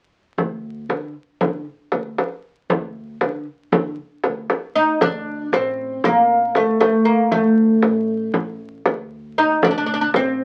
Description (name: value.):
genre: Turkish makam ensemble.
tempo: 234 BPM (eighths).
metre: 9/8.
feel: straight.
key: unclear.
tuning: A4 = 445 Hz.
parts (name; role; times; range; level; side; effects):
upright bass; bass; 0.4-10.4 s; A1 to D3; -36 LUFS; equal; none.
frame drum; percussion; 0.4-10.3 s; none; -22 LUFS; equal; none.
oud; melody; 4.8-10.4 s; A3 to Eb4; -19 LUFS; equal; none.
room: light reverb.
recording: very old 78 rpm record, vinyl crackle.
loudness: -20 LUFS.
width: mono.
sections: 0.4-5.0 A section; 5.0-10.4 B section.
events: none.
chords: none.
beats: | 0.38 0.64 0.90 1.16 1.41 1.67 1.93 2.18 2.44 | 2.70 2.96 3.21 3.47 3.73 3.98 4.24 4.50 4.75 | 5.01 5.27 5.52 5.78 6.04 6.29 6.55 6.81 7.06 | 7.32 7.58 7.83 8.09 8.35 8.60 8.86 9.12 9.37 | 9.63 9.89 10.14 10.40.